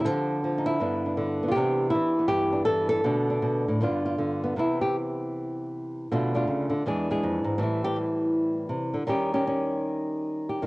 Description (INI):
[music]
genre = solo jazz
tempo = 159 BPM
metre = 4/4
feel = swing 63% on 8ths, rubato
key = C major from 4.6 s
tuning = A4 = 440 Hz
[part]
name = nylon-string guitar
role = solo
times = 0.0-10.7 s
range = E2 to A4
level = -24 LUFS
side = equal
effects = none
[sound]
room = wet spring reverb, RT60 1.9 s, small room ambience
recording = home recording on cassette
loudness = -24 LUFS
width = side -22 dB against mid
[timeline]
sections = 0.0-4.6 A section; 4.6-10.7 B section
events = nylon-string guitar solo 4.6-10.7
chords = 0.0 Dm7; 0.8 G6; 1.5 Cmaj9; 3.0 Asus24; 3.8 G7; 4.6 Cmaj7; 6.1 Bm7b5; 6.9 E7; 7.6 Am7; 9.1 Eb7